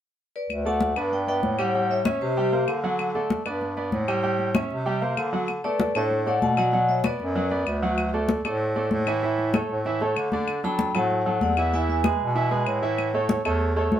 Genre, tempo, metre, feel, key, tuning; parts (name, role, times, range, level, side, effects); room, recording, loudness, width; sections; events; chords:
latin, salsa; 192 BPM; 4/4; straight; D major; A4 = 435 Hz
vibraphone with medium hard mallets; melody; 0.4-2.7, 5.6-7.8, 10.6-12.8 s; G4 to B5; -26 LUFS; left 2 dB
clear bass clarinet; bass; 0.5-14.0 s; D2 to D3; -26 LUFS; equal
claves; percussion; 0.5-13.6 s; -33 LUFS; left 4 dB
congas; percussion; 0.5-14.0 s; -27 LUFS; left 2 dB
bright grand piano; accompaniment; 0.7-14.0 s; D3 to G5; -27 LUFS; right 2 dB
moderate studio reverb, RT60 0.6 s; minimal, uncompressed stereo recording; -22 LUFS; side -10 dB against mid
0.5-5.5 A section; 5.5-14.0 B section
0.5 D; 1.1 Gadd9; 1.7 A7; 2.4 C5; 3.0 D; 3.6 Gadd9; 4.2 A7; 4.9 C5; 5.5 Dadd9; 6.7 Bm; 8.0 Dadd9; 9.2 A; 10.5 D; 11.7 E; 13.0 A